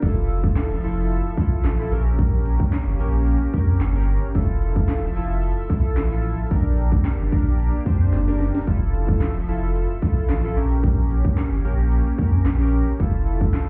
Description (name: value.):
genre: dance-pop.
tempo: 111 BPM.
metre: 4/4.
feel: straight.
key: F major.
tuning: A4 = 440 Hz.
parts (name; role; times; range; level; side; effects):
chorused polysynth; accompaniment; 0.0-13.6 s; Db4 to C5; -32 LUFS; equal; sidechain pumping.
chorused pulse-width pad; sustained chords; 0.0-13.7 s; F3 to E5; -33 LUFS; equal; sidechain pumping.
warm sub bass; bass; 0.0-13.5 s; E1 to F2; -23 LUFS; equal; sidechain pumping.
house drum kit; drums; 0.0-13.7 s; crash cymbal, handclaps, hi-hat, kick drum, snare drum; -24 LUFS; equal; overdrive.
group handclap; percussion; 0.6-13.7 s; none; barely audible; none; none.
room: digital ambience.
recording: heard muffled through a wall, club reverb, EQ.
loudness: -21 LUFS.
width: mono.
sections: 0.0-13.7 A section.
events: drum fill 8.1-8.7.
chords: 0.0 Fmaj7; 1.9 Bbm6; 4.3 Fmaj7; 6.5 Bb6; 8.7 Fmaj7; 10.6 Bbm6; 13.0 Fmaj7.